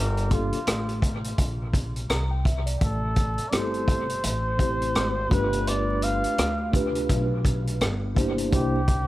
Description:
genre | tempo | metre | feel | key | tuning
hip hop, jazz-hop | 84 BPM | 4/4 | swing 60% on 16ths | unclear | A4 = 436 Hz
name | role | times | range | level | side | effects
trumpet with cup mute | melody | 0.0-9.1 s | F4 to F5 | -30 LUFS | equal | dub echo
upright bass | bass | 0.0-9.1 s | G1 to D2 | -28 LUFS | equal | none
vintage drum kit | drums | 0.2-9.1 s | hi-hat, kick drum, rim click | -26 LUFS | equal | none
mellow tine electric piano | accompaniment | 0.3-8.8 s | A3 to Bb5 | -30 LUFS | equal | medium stereo tremolo, dub echo
room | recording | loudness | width
light reverb, small room reverb | echo-heavy mix, vinyl crackle | -22 LUFS | side -16 dB against mid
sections
0.0-9.1 A section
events
none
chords
0.0 Gm9; 2.8 Am7; 5.3 G7; 7.8 G5; 8.5 C9

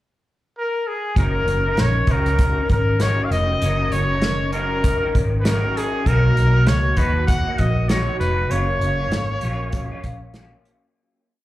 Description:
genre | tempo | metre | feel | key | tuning
indie pop, bedroom pop | 98 BPM | 4/4 | swing 60% on 16ths | F# major | A4 = 441 Hz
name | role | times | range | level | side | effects
bright trumpet | melody | 0.6-10.3 s | G#4 to F#5 | -23 LUFS | left 1 dB | lush chorus, slapback echo, plate reverb
electric guitar through a small old amp | accompaniment | 1.1-11.4 s | B2 to A#4 | -27 LUFS | left 2 dB | ensemble chorus, warbly pitch drift, plate reverb, slapback echo
vintage muted fingered electric bass | bass | 1.2-10.5 s | E#1 to D#2 | -20 LUFS | equal | none
unplugged drum kit | drums | 1.2-10.8 s | hi-hat, kick drum, snare drum | -22 LUFS | equal | none
room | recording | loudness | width
light reverb | live gig heard through the venue's PA, club reverb | -17 LUFS | side -15 dB against mid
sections
0.0-1.2 pickup bar; 1.2-11.0 A section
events
fade-out 8.5-11.0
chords
0.0 N.C.; 1.2 F#6; 6.1 Bmaj7; 8.5 F#maj7

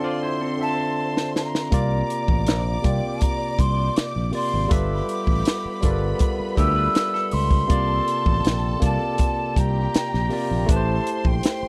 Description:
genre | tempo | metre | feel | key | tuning
lush 1970s-style soul | 80 BPM | 4/4 | straight | unclear | A4 = 441 Hz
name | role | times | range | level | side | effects
breathy mellow jazz flute | melody | 0.0-11.7 s | G5 to E6 | -29 LUFS | equal | none
warm studio string section | second line | 0.0-11.7 s | B3 to D6 | -37 LUFS | equal | none
barky tine electric piano | accompaniment | 0.0-11.7 s | C3 to E5 | -29 LUFS | equal | none
clean electric guitar | riff | 0.0-1.5, 6.6-7.7 s | B3 to D5 | -36 LUFS | equal | none
compact cocktail drum kit | drums | 1.2-11.6 s | hi-hat, kick drum, snare drum | -25 LUFS | equal | none
fingered electric bass | bass | 1.7-11.7 s | G1 to D2 | -26 LUFS | equal | none
vibraphone with medium hard mallets | texture | 1.7-10.8 s | D5 to E6 | -47 LUFS | equal | none
room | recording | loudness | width
studio ambience | dry, close 1970s-style studio recording | -22 LUFS | mono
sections
0.0-11.7 A section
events
drum fill 0.2-1.7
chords
0.0 Dm9; 1.7 C9sus4; 4.7 G13; 7.7 C9sus4; 10.7 Am7

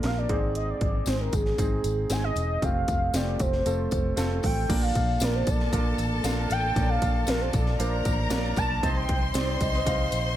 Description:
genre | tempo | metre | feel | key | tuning
piano-driven pop | 116 BPM | 4/4 | straight | Bb major | A4 = 443 Hz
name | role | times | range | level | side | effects
warm velvety synth lead | melody | 0.0-10.4 s | Ab4 to A5 | -30 LUFS | equal | chorus
warm grand piano | accompaniment | 0.0-10.4 s | Ab2 to F5 | -31 LUFS | right 3 dB | none
vintage muted fingered electric bass | bass | 0.0-10.3 s | E1 to C2 | -29 LUFS | equal | none
house drum kit | drums | 0.0-10.2 s | crash cymbal, hi-hat, kick drum, snare drum | -28 LUFS | equal | overdrive
tambourine | percussion | 1.1-10.2 s | none | -40 LUFS | left 7 dB | none
rich studio violin section | second line | 4.7-10.4 s | A4 to C6 | -32 LUFS | left 2 dB | ping-pong delay
room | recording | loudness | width
little or no reverb | none | -23 LUFS | side -12 dB against mid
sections
0.0-4.7 A section; 4.7-10.4 B section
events
none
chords
0.3 Ab; 2.6 Fadd9; 4.7 Bb; 8.8 Cm

